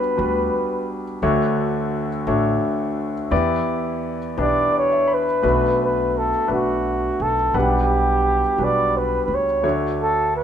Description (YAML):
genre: acoustic folk-pop ballad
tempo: 57 BPM (dotted quarters)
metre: 6/8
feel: straight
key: B minor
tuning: A4 = 440 Hz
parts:
  - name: breathy flugelhorn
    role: melody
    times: 0.0-0.9, 4.4-10.4 s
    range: F#4 to D5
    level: -20 LUFS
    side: equal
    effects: none
  - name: warm concert grand piano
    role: accompaniment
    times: 0.0-10.4 s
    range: B1 to B5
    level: -22 LUFS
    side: left 1 dB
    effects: none
  - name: upright bass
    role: bass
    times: 0.2-10.4 s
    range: A1 to E2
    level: -26 LUFS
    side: right 1 dB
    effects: none
room: light reverb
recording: minimal, uncompressed stereo recording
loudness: -18 LUFS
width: side -9 dB against mid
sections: 0.0-5.4 A section; 5.4-10.4 B section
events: none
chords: 0.0 Gmaj7/B; 1.2 Dmaj7; 3.3 Em7; 5.4 Bm7; 7.5 Gmaj7/B; 9.6 Dmaj7